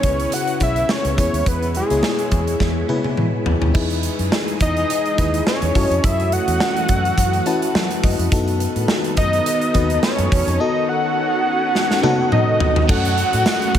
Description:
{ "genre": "1980s-style pop", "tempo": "105 BPM", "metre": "4/4", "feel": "swing 55% on 16ths", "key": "unclear", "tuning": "A4 = 440 Hz", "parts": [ { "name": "fat analog lead", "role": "melody", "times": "0.0-13.8 s", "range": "G#4 to F#5", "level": "-21 LUFS", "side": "equal", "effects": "chorus, shimmer reverb" }, { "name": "FM electric piano", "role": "accompaniment", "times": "0.0-13.8 s", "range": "A3 to A5", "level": "-24 LUFS", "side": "left 4 dB", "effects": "chorus, shimmer reverb" }, { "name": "phased string machine", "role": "sustained chords", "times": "0.0-13.8 s", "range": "B2 to A4", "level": "-27 LUFS", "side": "right 1 dB", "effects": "ensemble chorus, phaser, shimmer reverb" }, { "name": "vintage muted fingered electric bass", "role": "bass", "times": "0.0-13.8 s", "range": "B1 to F#3", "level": "-22 LUFS", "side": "equal", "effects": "none" }, { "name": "big rock drum kit", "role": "drums", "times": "0.0-13.8 s", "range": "crash cymbal, hi-hat, kick drum, snare drum, tambourine, toms", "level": "-20 LUFS", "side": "equal", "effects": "gated reverb" }, { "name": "biting overdriven guitar", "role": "accompaniment", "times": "12.9-13.8 s", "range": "F#3 to F#4", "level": "-29 LUFS", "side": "right 5 dB", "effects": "lush chorus, shimmer reverb" } ], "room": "light reverb, small room ambience", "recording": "none", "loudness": "-16 LUFS", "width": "side -10 dB against mid", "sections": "0.0-3.8 A section; 3.8-12.9 B section", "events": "drum fill 2.6-3.8, 11.8-12.9; FM electric piano fill 7.2-8.3", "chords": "0.0 C#m7; 1.2 E; 3.8 Emaj7; 5.8 F#m7; 8.3 B7; 12.9 F#m" }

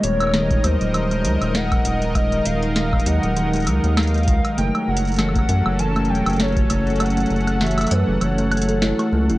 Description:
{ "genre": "IDM", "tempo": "99 BPM", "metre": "4/4", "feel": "swing 56% on 16ths", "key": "unclear", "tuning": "A4 = 441 Hz", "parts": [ { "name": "warbly nostalgic lead", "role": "melody", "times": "0.0-9.1 s", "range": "B4 to A5", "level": "-26 LUFS", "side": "left 1 dB", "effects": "wide subtle chorus, digital delay" }, { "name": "warm analog pad", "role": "sustained chords", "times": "0.0-9.4 s", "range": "D#3 to F#5", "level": "-26 LUFS", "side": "equal", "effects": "chorus, vintage 12-bit sampler grit" }, { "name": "round analog bass", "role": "bass", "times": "0.0-9.4 s", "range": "D#1 to F#2", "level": "-22 LUFS", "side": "equal", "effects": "tube saturation" }, { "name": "booming analog drum machine", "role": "drums", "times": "0.0-9.4 s", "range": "hi-hat, snare drum, woodblock", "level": "-25 LUFS", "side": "equal", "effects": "none" }, { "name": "kalimba", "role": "arpeggios", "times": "0.3-9.4 s", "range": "D#3 to A4", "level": "-23 LUFS", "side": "equal", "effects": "vintage 12-bit sampler grit, tape echo" }, { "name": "electronic kick drum", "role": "drums", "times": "0.5-6.7 s", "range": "none", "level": "-22 LUFS", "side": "equal", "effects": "none" } ], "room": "light reverb", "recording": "worn, warbling old tape, cassette tape, warbly pitch drift", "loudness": "-17 LUFS", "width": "side -17 dB against mid", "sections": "0.0-9.4 A section", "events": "kick drops out 7.0-9.4", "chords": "0.0 D#madd9; 4.6 F#m" }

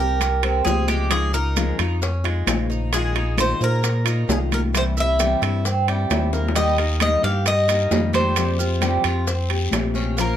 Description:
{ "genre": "latin, Cuban son and guajira", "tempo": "132 BPM", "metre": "4/4", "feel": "straight", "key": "F minor", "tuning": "A4 = 438 Hz", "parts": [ { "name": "Cuban tres", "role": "melody", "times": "0.0-10.4 s", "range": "G4 to F5", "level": "-23 LUFS", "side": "equal", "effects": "none" }, { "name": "nylon-string guitar", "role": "accompaniment", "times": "0.0-10.4 s", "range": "C3 to C5", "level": "-27 LUFS", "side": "left 6 dB", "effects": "none" }, { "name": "Cuban tres", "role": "arpeggios", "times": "0.0-10.4 s", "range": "G3 to Ab4", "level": "-28 LUFS", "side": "right 6 dB", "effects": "none" }, { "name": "round analog bass", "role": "bass", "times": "0.0-10.4 s", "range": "Bb1 to Bb2", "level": "-22 LUFS", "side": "equal", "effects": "none" }, { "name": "bongos", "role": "percussion", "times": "0.2-10.4 s", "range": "none", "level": "-31 LUFS", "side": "left 7 dB", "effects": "none" }, { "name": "congas", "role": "percussion", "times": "0.2-10.4 s", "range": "none", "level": "-30 LUFS", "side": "left 2 dB", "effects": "none" }, { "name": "maracas", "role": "percussion", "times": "0.2-10.4 s", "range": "none", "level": "-32 LUFS", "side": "right 8 dB", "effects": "none" }, { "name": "timbales", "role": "percussion", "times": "0.2-10.4 s", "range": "none", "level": "-28 LUFS", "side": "right 9 dB", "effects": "none" }, { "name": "guiro", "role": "percussion", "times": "6.6-10.4 s", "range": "none", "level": "-34 LUFS", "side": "left 5 dB", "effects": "none" } ], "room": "light reverb", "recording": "close, detailed microphones", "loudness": "-18 LUFS", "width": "side -10 dB against mid", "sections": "0.0-10.4 A section", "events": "drum fill 6.3", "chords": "0.0 Fmadd9; 1.1 Dbadd9; 2.9 Bb7sus4; 4.7 C; 6.6 Eb; 8.4 Fmadd9" }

